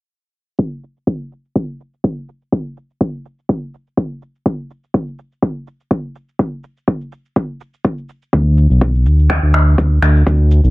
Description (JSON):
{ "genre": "afro house", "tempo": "124 BPM", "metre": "4/4", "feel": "swing 55% on 16ths", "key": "unclear", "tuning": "A4 = 444 Hz", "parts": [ { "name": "electronic cabasa and finger snaps", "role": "drums", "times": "0.6-10.7 s", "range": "none", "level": "-19 LUFS", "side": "equal", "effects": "none" }, { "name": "electronic kick drum", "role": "drums", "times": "0.6-10.4 s", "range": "none", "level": "-18 LUFS", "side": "equal", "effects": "high-pass filter on kick" }, { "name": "smooth synth bass", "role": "bass", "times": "8.3-10.7 s", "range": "B1 to D2", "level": "-10 LUFS", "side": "equal", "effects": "sidechain pumping" } ], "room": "little or no reverb", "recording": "low-pass filter", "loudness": "-15 LUFS", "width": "side -21 dB against mid", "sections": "0.6-10.7 A section", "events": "filter sweep 0.6-10.7", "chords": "none" }